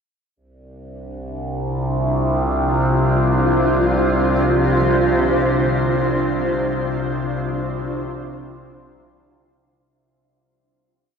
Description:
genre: dark ambient drone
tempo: free time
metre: none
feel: none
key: unclear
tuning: A4 = 440 Hz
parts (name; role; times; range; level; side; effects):
- granular cloud pad; sustained chords; 1.4-10.0 s; D4 to C5; -21 LUFS; equal; built-in reverb
- overtone-sweeping drone; drone; 1.0-10.1 s; C2 to C3; -20 LUFS; equal; chorus, built-in reverb
room: wet huge ambient reverb, RT60 8.8 s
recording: worn, warbling old tape, cassette tape, warbly pitch drift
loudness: -16 LUFS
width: side -6 dB against mid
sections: 0.4-10.0 A section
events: fade-out 5.2-10.0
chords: 0.4 Csus2

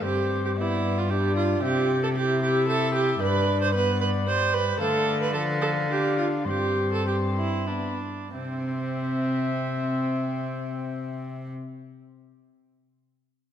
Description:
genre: classical, renaissance-style consort dance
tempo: 91-114 BPM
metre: 3/4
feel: straight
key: C major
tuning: A4 = 440 Hz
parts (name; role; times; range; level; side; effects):
- warm cornet; melody; 0.0-11.5 s; C5 to C6; -34 LUFS; left 5 dB; none
- dark viola; second line; 0.0-11.5 s; C4 to C5; -26 LUFS; right 3 dB; none
- warm trombone; accompaniment; 0.0-11.5 s; F3 to E4; -32 LUFS; left 2 dB; none
- rich cello; bass; 0.0-11.5 s; G2 to D3; -28 LUFS; equal; none
room: wet concert hall reverb, RT60 2.1 s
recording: none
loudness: -23 LUFS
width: side -9 dB against mid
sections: 0.0-8.3 A section; 8.3-12.3 B section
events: slowing down 4.0-8.3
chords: 0.0 Gsus4; 0.6 G; 1.6 C; 3.2 G; 4.8 Dm; 6.5 Gsus4; 7.7 G; 8.3 C

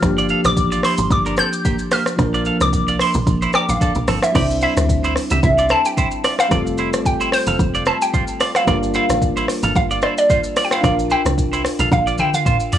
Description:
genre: afrobeats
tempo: 111 BPM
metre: 4/4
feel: swing 55% on 16ths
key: unclear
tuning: A4 = 440 Hz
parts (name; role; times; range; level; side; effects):
- hollow square pluck; melody; 0.0-12.8 s; C5 to G6; -20 LUFS; equal; chorus, analog delay
- tine electric piano; accompaniment; 0.0-12.8 s; F3 to C5; -23 LUFS; left 1 dB; none
- woody log drum bass; bass; 0.0-12.2 s; F1 to D2; -21 LUFS; equal; none
- afro-pop drum kit; drums; 0.0-12.8 s; crash cymbal, hi-hat, kick drum, rim click, shaker, toms; -21 LUFS; equal; none
- clean electric guitar; riff; 0.2-12.8 s; Bb3 to F5; -23 LUFS; right 5 dB; analog delay
room: little or no reverb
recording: dry, gritty hardware recording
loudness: -15 LUFS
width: side -10 dB against mid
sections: 0.0-4.3 A section; 4.3-12.8 B section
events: drum fill 11.9-12.8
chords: 0.0 Gm7; 4.3 Cadd9; 6.5 Fadd9; 8.7 Gm7; 10.8 Bb

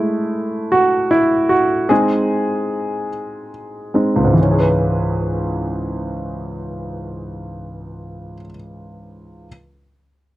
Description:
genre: pop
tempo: 46-53 BPM (dotted quarters)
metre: 6/8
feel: straight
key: C# minor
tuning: A4 = 440 Hz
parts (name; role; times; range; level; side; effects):
- clear grand piano; accompaniment; 0.0-9.5 s; C#2 to B4; -17 LUFS; equal; none
room: light reverb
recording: dry, close 1970s-style studio recording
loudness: -15 LUFS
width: side -16 dB against mid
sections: 0.0-4.4 A section; 4.4-7.0 B section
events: slowing down 0.0-4.4; grand piano solo 0.0-4.4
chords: 0.0 F#m9/G#; 1.9 G#; 4.4 C#m7

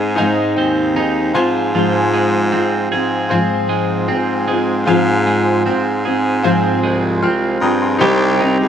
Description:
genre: acoustic pop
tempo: 77 BPM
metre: 4/4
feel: swing 55% on 16ths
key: F minor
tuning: A4 = 440 Hz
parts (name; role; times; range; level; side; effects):
- bright upright piano; accompaniment; 0.0-8.7 s; Eb4 to F6; -24 LUFS; left 4 dB; slapback echo
- fingerpicked steel-string acoustic guitar; accompaniment; 0.0-8.7 s; Ab2 to C5; -17 LUFS; left 1 dB; double-tracked left and right, slapback echo
- twelve-string electric guitar; arpeggios; 0.0-8.7 s; F3 to Ab4; -21 LUFS; right 6 dB; none
- clear baritone saxophone; bass; 0.0-8.7 s; C2 to Ab2; -19 LUFS; equal; none
- hand-pumped harmonium; sustained chords; 1.7-8.7 s; C3 to Ab4; -24 LUFS; left 1 dB; none
room: little or no reverb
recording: recorded outdoors, with no room sound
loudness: -13 LUFS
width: side -8 dB against mid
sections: 0.0-8.0 A section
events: upright piano fill 0.0-1.7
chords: 0.0 Ab; 1.3 Fm/Ab; 8.0 Cm

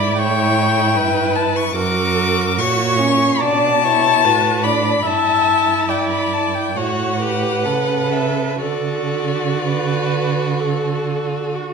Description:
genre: classical, slow romantic movement for string quartet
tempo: 59-78 BPM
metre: 4/4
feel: rubato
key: D major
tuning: A4 = 438 Hz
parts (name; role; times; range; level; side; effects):
- warm violin; melody; 0.0-11.5 s; D5 to D6; -20 LUFS; left 9 dB; none
- warm violin; second line; 0.0-11.7 s; C#4 to A4; -22 LUFS; left 1 dB; none
- warm viola; accompaniment; 0.0-11.7 s; F#4 to E5; -21 LUFS; right 4 dB; none
- warm cello; bass; 0.0-11.7 s; F#2 to D3; -22 LUFS; right 7 dB; none
room: wet recital hall reverb, RT60 1.4 s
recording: minimal, uncompressed stereo recording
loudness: -15 LUFS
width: side -5 dB against mid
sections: 0.0-11.7 A section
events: none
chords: 0.2 A; 1.8 F#; 3.4 Bm; 5.1 Em/G; 6.8 A7; 8.6 D

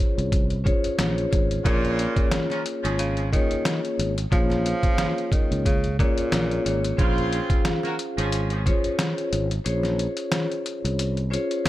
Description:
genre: hip hop, boom-bap hip-hop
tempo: 90 BPM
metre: 4/4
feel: swing 56% on 16ths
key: unclear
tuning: A4 = 440 Hz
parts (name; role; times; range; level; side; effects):
- vibraphone with medium hard mallets; accompaniment; 0.0-11.7 s; Bb3 to F5; -27 LUFS; left 1 dB; cassette tape, high-pass filter, low-pass filter
- fretless electric bass; bass; 0.2-11.7 s; Ab1 to Db2; -26 LUFS; equal; none
- trip hop sampler-style drum kit; drums; 0.2-11.7 s; hi-hat, kick drum, snare drum; -24 LUFS; equal; none
- warm horn section; stabs; 1.6-8.6 s; Db3 to Bb4; -31 LUFS; right 1 dB; high-pass filter, low-pass filter, tape echo
- mellow tenor saxophone; melody; 1.7-6.9 s; Bb2 to F3; -30 LUFS; right 2 dB; high-pass filter, low-pass filter, tape echo
room: little or no reverb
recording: none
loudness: -21 LUFS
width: side -15 dB against mid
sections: 0.0-11.7 A section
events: kick muted 9.7-11.7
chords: 0.0 Dbmaj7; 1.7 Bbm7; 7.0 Dbmaj7

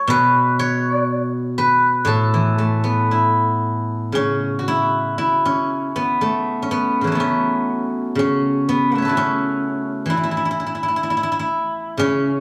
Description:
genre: chinese traditional, Chinese solo plucked strings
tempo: 60 BPM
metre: 4/4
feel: uneven beats, rubato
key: A gong mode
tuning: A4 = 440 Hz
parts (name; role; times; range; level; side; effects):
- steel-string zither; solo; 0.0-12.4 s; A2 to F#5; -19 LUFS; equal; none
room: moderate recital hall reverb, RT60 1.3 s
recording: small room reverb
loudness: -19 LUFS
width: mono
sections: 0.0-4.1 A section; 4.1-12.4 B section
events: none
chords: none

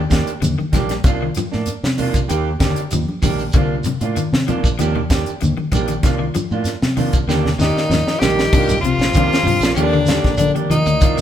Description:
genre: afrobeat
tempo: 96 BPM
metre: 4/4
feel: straight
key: C minor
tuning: A4 = 440 Hz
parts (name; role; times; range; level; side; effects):
- electric guitar at the edge of break-up; arpeggios; 0.0-11.2 s; C3 to D4; -23 LUFS; left 6 dB; none
- fingered electric bass; bass; 0.0-11.2 s; Bb1 to Eb3; -22 LUFS; equal; none
- electric guitar at the edge of break-up; stabs; 0.1-11.2 s; Eb3 to G4; -23 LUFS; right 5 dB; none
- tight funk drum kit; drums; 0.1-11.2 s; crash cymbal, hi-hat, kick drum, snare drum; -19 LUFS; equal; none
- shekere; percussion; 0.1-11.2 s; none; -28 LUFS; right 1 dB; none
- congas; percussion; 0.4-11.2 s; none; -26 LUFS; right 2 dB; none
- edgy tenor saxophone; melody; 7.6-11.2 s; D4 to G4; -19 LUFS; left 2 dB; none
- clear trombone; second line; 7.6-11.2 s; Bb2 to Eb3; -28 LUFS; right 6 dB; none
- warm bass trombone; second line; 7.6-11.2 s; D3 to G3; -25 LUFS; left 3 dB; none
room: moderate stone room reverb, RT60 1.2 s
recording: band playing live in one room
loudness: -15 LUFS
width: side -10 dB against mid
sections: 0.0-8.5 A section; 8.5-11.2 B section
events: drum fill 7.3-8.5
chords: 0.0 Ebmaj7; 1.0 Cm11; 2.3 Ebmaj7; 3.5 Cm11; 4.8 Ebmaj7; 6.0 Cm11; 7.3 Ebmaj7; 8.5 Cm11; 9.8 Ebmaj7

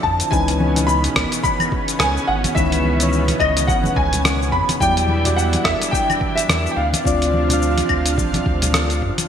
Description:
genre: sunset chillout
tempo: 107 BPM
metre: 4/4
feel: swing 57% on 16ths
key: unclear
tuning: A4 = 439 Hz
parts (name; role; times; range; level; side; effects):
- warm concert grand piano; melody; 0.0-8.7 s; D#5 to B5; -22 LUFS; equal; ensemble chorus, digital delay
- soft electric-piano-like synth keys; accompaniment; 0.0-9.3 s; D#3 to F5; -23 LUFS; moving between left 5 dB and right 5 dB; chorus, auto-pan, ping-pong delay
- lush unison pad; sustained chords; 0.0-9.3 s; B2 to F5; -25 LUFS; equal; chorus
- warm sub bass; bass; 0.0-9.1 s; G#1 to G2; -21 LUFS; equal; tube saturation
- electronic kick drum; drums; 0.0-9.1 s; none; -24 LUFS; equal; overdrive
- dusty soul sampler-style drum kit; drums; 0.2-9.3 s; claves, hi-hat, rim click, shaker; -22 LUFS; left 1 dB; overdrive, gated reverb
- congas; percussion; 0.6-9.3 s; none; -28 LUFS; left 1 dB; none
room: moderate lush hall reverb, RT60 1.9 s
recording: bright 1980s-style digital production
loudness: -15 LUFS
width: side -8 dB against mid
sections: 0.0-9.3 A section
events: none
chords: 0.3 C#m9; 4.8 Em9; 6.8 Dm7

